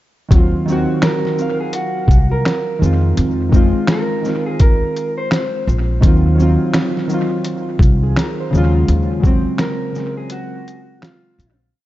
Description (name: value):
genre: lo-fi hip hop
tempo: 84 BPM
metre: 4/4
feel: swing 59% on 16ths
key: Eb dorian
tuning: A4 = 442 Hz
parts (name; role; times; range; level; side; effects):
- warm analog keys; accompaniment; 0.3-11.8 s; Db3 to F5; -19 LUFS; equal; chorus, low-pass filter, analog delay
- upright bass; bass; 0.3-11.7 s; Bb1 to F2; -15 LUFS; equal; none
- trip hop sampler-style drum kit; drums; 0.3-11.6 s; finger snaps, hi-hat, kick drum, shaker, snare drum; -15 LUFS; equal; vintage 12-bit sampler grit
- electric guitar through a small old amp; melody; 1.0-11.6 s; F4 to C5; -23 LUFS; right 2 dB; low-pass filter, analog delay
room: little or no reverb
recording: echo-heavy mix, cassette tape, nothing above 7.8 kHz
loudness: -13 LUFS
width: side -15 dB against mid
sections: 0.3-11.7 A section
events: fade-out 8.9-11.7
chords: 0.3 Ebm69; 2.8 Fm7; 6.0 Ebm69; 8.5 Ebm11